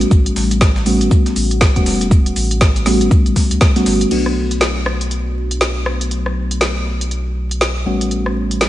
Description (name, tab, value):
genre	deep house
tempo	120 BPM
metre	4/4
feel	swing 60% on 16ths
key	B minor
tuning	A4 = 440 Hz
part	mellow FM electric piano	stabs	0.0-8.7 s	F#3 to F#4	-19 LUFS	equal	chorus, phaser, sidechain pumping, tape echo
part	warm sub bass	bass	0.0-8.7 s	E1 to C#2	-20 LUFS	equal	sidechain pumping
part	deep house drum kit	drums	0.0-8.7 s	crash cymbal, hi-hat, rim click, shaker, snare drum	-20 LUFS	equal	none
part	breakbeat sampler-style drum kit	drums	0.1-4.0 s	hi-hat, snare drum	-30 LUFS	left 1 dB	high-pass filter on hats, high-pass filter on snare, high-pass filter on room
part	electronic kick drum	drums	0.1-3.7 s	none	-12 LUFS	equal	none
room	light reverb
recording	vinyl crackle, nothing above 10.5 kHz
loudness	-13 LUFS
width	side -14 dB against mid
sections	0.0-4.1 A section; 4.1-8.7 B section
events	none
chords	0.0 A13; 4.1 Bm7; 7.9 A13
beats	| 0.11 0.61 1.11 1.61 | 2.11 2.61 3.11 3.61 | 4.11 4.61 5.11 5.61 | 6.11 6.61 7.11 7.61 | 8.11 8.61